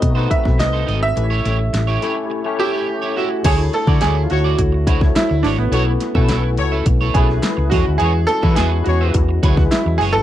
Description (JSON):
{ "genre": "polished 1980s jazz-funk pop", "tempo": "105 BPM", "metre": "4/4", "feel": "straight", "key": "unclear", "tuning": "A4 = 440 Hz", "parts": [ { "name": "clear baby grand piano", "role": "melody", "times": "0.0-10.2 s", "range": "B3 to E5", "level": "-21 LUFS", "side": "right 3 dB", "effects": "none" }, { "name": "barky tine electric piano", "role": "accompaniment", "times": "0.0-10.2 s", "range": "F#3 to C#5", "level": "-23 LUFS", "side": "left 5 dB", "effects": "overdrive, ensemble chorus" }, { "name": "electric guitar at the edge of break-up", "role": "riff", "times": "0.0-10.2 s", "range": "D#4 to E5", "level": "-26 LUFS", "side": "right 8 dB", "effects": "analog chorus" }, { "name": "hollow-body short-scale fingered electric bass", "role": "bass", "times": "0.0-10.2 s", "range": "F#1 to E3", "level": "-18 LUFS", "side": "equal", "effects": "none" }, { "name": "pop drum kit", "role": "drums", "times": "0.0-10.1 s", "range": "crash cymbal, hi-hat, kick drum, snare drum", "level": "-18 LUFS", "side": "equal", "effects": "none" }, { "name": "warm horn section", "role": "second line", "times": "3.4-9.2 s", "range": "F#4 to C#5", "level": "-25 LUFS", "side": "left 4 dB", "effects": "none" } ], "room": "little or no reverb", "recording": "dry, close 1970s-style studio recording", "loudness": "-14 LUFS", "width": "side -12 dB against mid", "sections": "0.0-3.5 A section; 3.5-10.2 B section", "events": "none", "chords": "0.0 B7b9; 1.2 A7; 3.5 Dmaj9; 5.7 B9sus4; 7.7 E69", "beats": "0.03 0.60 | 1.17 1.74 2.31 2.88 | 3.45 4.02 4.59 5.16 | 5.73 6.30 6.87 7.44 | 8.01 8.58 9.15 9.72" }